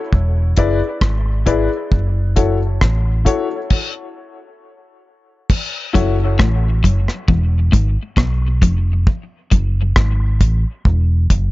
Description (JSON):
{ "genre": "dub reggae", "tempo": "67 BPM", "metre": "4/4", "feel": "straight", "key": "F# minor", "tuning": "A4 = 440 Hz", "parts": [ { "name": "vintage muted fingered electric bass", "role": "bass", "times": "0.1-11.5 s", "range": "E1 to B1", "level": "-16 LUFS", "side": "equal", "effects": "none" }, { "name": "deep reggae drum kit", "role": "drums", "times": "0.1-11.5 s", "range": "crash cymbal, hi-hat, kick drum, rim click", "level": "-15 LUFS", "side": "equal", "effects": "none" }, { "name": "dark upright piano", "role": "stabs", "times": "0.6-6.2 s", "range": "E4 to D5", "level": "-22 LUFS", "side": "left 5 dB", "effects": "dub echo" }, { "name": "clean electric guitar", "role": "riff", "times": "5.9-9.8 s", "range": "E2 to B2", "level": "-22 LUFS", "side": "left 3 dB", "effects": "dub echo" } ], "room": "small room ambience", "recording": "nothing above 7.6 kHz", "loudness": "-14 LUFS", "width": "side -18 dB against mid", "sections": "0.0-5.5 A section; 5.5-11.5 B section", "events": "break 0.0-5.5; stop 3.7-5.5", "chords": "0.1 E7; 1.9 F#m7; 3.7 N.C.; 5.5 F#m; 7.3 E; 9.1 F#m; 10.9 N.C.", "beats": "0.13 1.03 | 1.92 2.81 3.71 4.60 | 5.50 6.39 7.28 8.18 | 9.07 9.96 10.86" }